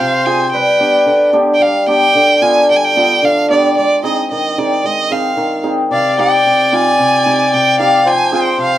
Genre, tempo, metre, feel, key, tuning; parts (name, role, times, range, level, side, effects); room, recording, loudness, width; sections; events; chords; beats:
klezmer; 112 BPM; 4/4; straight; G phrygian dominant; A4 = 440 Hz
rich violin; melody; 0.0-8.8 s; D5 to Ab5; -14 LUFS; right 3 dB
accordion; second line; 0.0-1.3, 5.9-8.8 s; B4 to D5; -16 LUFS; left 2 dB
hammered dulcimer; accompaniment; 0.0-8.8 s; C3 to Ab4; -13 LUFS; left 1 dB
moderate studio reverb, RT60 0.5 s; dark, warm production; -10 LUFS; side -13 dB against mid
0.0-1.6 A section; 1.6-8.8 A section
0.0 Fm; 0.5 G; 3.8 Ab; 5.9 Cm; 8.1 Fm
0.53 1.07 | 1.61 2.15 2.69 3.23 | 3.77 4.31 4.84 5.38 | 5.92 6.45 6.99 7.52 | 8.06 8.59